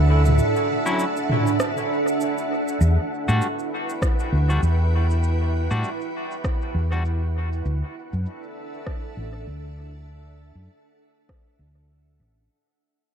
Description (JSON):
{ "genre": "ambient dub", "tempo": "99 BPM", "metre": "4/4", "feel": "swing 57% on 16ths", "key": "unclear", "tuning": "A4 = 437 Hz", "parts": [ { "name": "soft additive organ-like pad", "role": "sustained chords", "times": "0.0-12.5 s", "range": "D4 to G5", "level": "-26 LUFS", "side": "right 2 dB", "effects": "ensemble chorus, built-in reverb" }, { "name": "hollow-body short-scale fingered electric bass", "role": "bass", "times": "0.0-12.5 s", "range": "A1 to A2", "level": "-20 LUFS", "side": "equal", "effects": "none" }, { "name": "organic electronic drum kit", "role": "drums", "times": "0.3-12.5 s", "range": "rim click, shaker, toms", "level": "-28 LUFS", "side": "equal", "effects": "low-pass filter on perc, low-pass filter on toms, low-pass filter on snare, low-pass filter on room, dub echo" }, { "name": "clean electric guitar", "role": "stabs", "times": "0.9-7.0 s", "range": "F#3 to F#4", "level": "-30 LUFS", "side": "left 2 dB", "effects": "dub echo" }, { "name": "electronic kick drum", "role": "drums", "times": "4.0-11.4 s", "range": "none", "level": "-24 LUFS", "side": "equal", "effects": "none" } ], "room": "light reverb", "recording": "dark, warm production", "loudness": "-20 LUFS", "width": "side -8 dB against mid", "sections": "0.0-2.8 A section; 2.8-12.5 B section", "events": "break 0.4-2.8; fade-out 2.8-12.5; filter sweep on drum 2.8-12.5", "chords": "0.0 D; 2.8 Em9; 7.7 D", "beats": "| 0.38 0.99 1.59 2.20 | 2.81 3.41 4.02 4.62 | 5.23 5.84 6.44 7.05 | 7.66 8.26 8.87 9.47 | 10.08 10.69 11.29 11.90" }